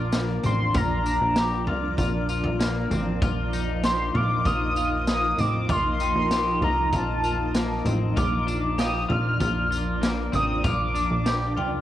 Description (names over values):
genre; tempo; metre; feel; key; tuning
dream pop; 97 BPM; 4/4; straight; Bb major; A4 = 440 Hz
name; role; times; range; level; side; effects
warm velvety synth lead; melody; 0.0-11.6 s; A5 to F6; -27 LUFS; equal; chorus, cassette tape, analog delay
shimmering ambient pad; sustained chords; 0.0-11.8 s; F3 to Eb4; -30 LUFS; equal; chorus, built-in reverb, cassette tape
electric guitar at the edge of break-up; arpeggios; 0.0-11.8 s; Bb3 to G4; -31 LUFS; left 6 dB; lush chorus, cassette tape, analog delay
plucky analog bass; bass; 0.0-11.8 s; A1 to C2; -27 LUFS; equal; none
marimba with medium hard mallets; texture; 0.0-11.8 s; Bb4 to Bb5; -37 LUFS; right 9 dB; cassette tape, analog delay
raw garage drum kit; drums; 0.1-11.7 s; kick drum, snare drum, tambourine, toms; -29 LUFS; equal; none
room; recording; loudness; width
moderate spring reverb, RT60 1.7 s; home recording on cassette; -22 LUFS; side -12 dB against mid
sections
0.0-11.8 A section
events
none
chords
0.0 Bbmaj7; 3.2 Ebsus2; 8.2 Bb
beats
0.13 | 0.75 1.37 1.99 2.60 | 3.22 3.84 4.46 5.08 | 5.70 6.32 6.93 7.55 | 8.17 8.79 9.41 10.03 | 10.64 11.26